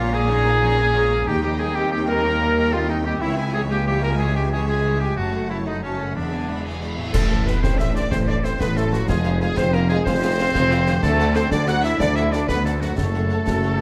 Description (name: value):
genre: cinematic, heroic adventure film score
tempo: 123 BPM (dotted quarters)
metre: 12/8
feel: straight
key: unclear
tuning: A4 = 441 Hz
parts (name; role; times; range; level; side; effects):
- warm symphonic violin section; melody; 0.0-13.8 s; F#4 to B5; -36 LUFS; equal; none
- bright oboe; second line; 0.0-13.8 s; Db4 to F#5; -30 LUFS; equal; none
- clear symphonic violin section; second line; 0.0-13.7 s; G4 to F#5; -39 LUFS; equal; none
- mellow clarinet; second line; 0.0-13.8 s; Ab3 to F#5; -33 LUFS; equal; none
- warm symphonic viola section; accompaniment; 0.0-13.8 s; Fb3 to A4; -35 LUFS; equal; none
- mellow French horn section; sustained chords; 0.0-13.8 s; F#3 to Bb4; -28 LUFS; equal; none
- concert harp; arpeggios; 0.0-13.8 s; E2 to D5; -35 LUFS; equal; none
- warm trumpet; stabs; 0.0-6.6 s; Db4 to Bb4; -30 LUFS; equal; none
- rich symphonic cello section; bass; 0.0-13.8 s; Db2 to Bb2; -29 LUFS; equal; none
- rich symphonic double bass section; bass; 0.0-13.8 s; E1 to Eb2; -29 LUFS; equal; none
- cymbal swell, clash cymbals and concert bass drum; percussion; 3.2-7.8 s; none; -28 LUFS; equal; none
- flute section; second line; 7.1-13.8 s; F#4 to F#5; -36 LUFS; equal; none
- mellow tuba; bass; 7.1-13.8 s; F1 to D2; -28 LUFS; equal; none
- concert snare drum, clash cymbals and concert bass drum; drums; 7.1-13.6 s; none; -31 LUFS; equal; none
room: moderate recital hall reverb, RT60 1.4 s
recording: none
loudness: -21 LUFS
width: mono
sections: 0.0-7.1 A section; 7.1-13.8 B section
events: band accent 7.1-7.5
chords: 0.0 Bbm; 1.3 Eb; 3.2 Dbm; 5.2 Gbm; 6.2 E7; 7.1 Am; 9.1 Fm; 11.0 D; 13.0 F#m